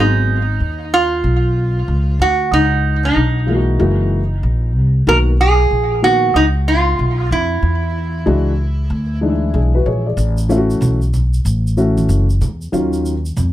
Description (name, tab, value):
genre	hip hop, jazz-hop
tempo	94 BPM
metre	4/4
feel	swing 64% on 16ths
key	unclear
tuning	A4 = 440 Hz
part	metal-body resonator slide guitar	melody	0.0-9.2 s	D#4 to A#4	-17 LUFS	right 2 dB	tape echo
part	dark grand piano	accompaniment	0.0-13.1 s	D#3 to D5	-18 LUFS	left 2 dB	none
part	upright bass	bass	0.0-13.5 s	F#1 to E#2	-16 LUFS	equal	none
part	egg shaker and congas	percussion	10.2-13.5 s	none	-24 LUFS	right 2 dB	none
room	light reverb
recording	dark, warm production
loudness	-13 LUFS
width	side -13 dB against mid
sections	0.0-13.5 A section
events	none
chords	0.0 G#m7; 2.5 C#m9; 3.8 F#9; 5.1 Bmaj7; 7.6 E9; 10.2 A6; 12.7 D#m9